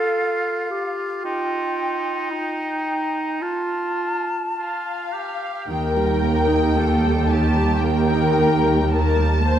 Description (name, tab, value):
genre	cinematic, emotional film score for orchestra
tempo	55 BPM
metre	4/4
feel	rubato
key	unclear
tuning	A4 = 441 Hz
part	bright oboe	second line	0.0-5.7 s	Eb4 to G4	-28 LUFS	right 1 dB	none
part	bright silver concert flute	second line	0.0-5.4 s	F5 to A5	-28 LUFS	left 1 dB	none
part	warm clarinet	second line	0.0-4.6 s	Eb4 to A4	-25 LUFS	right 1 dB	none
part	muted studio violin section	melody	4.6-9.6 s	F5 to A5	-26 LUFS	left 3 dB	none
part	muted studio violin section	second line	5.7-9.6 s	G4 to C5	-23 LUFS	left 3 dB	none
part	muted studio viola section	accompaniment	5.7-9.6 s	Eb3 to G4	-23 LUFS	right 2 dB	none
part	muted studio cello section	bass	5.7-9.6 s	Eb2	-22 LUFS	right 2 dB	none
part	muted studio double bass section	bass	5.7-9.6 s	Eb2	-22 LUFS	right 2 dB	none
room	moderate scoring stage reverb, RT60 1.5 s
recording	none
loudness	-19 LUFS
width	side -10 dB against mid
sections	0.0-5.7 A section; 5.7-9.6 B section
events	none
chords	0.0 N.C.; 1.2 Ebadd9; 3.4 F; 5.7 Eb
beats	0.17 | 1.24 2.32 3.42 4.58 | 5.69 6.78 7.85 8.92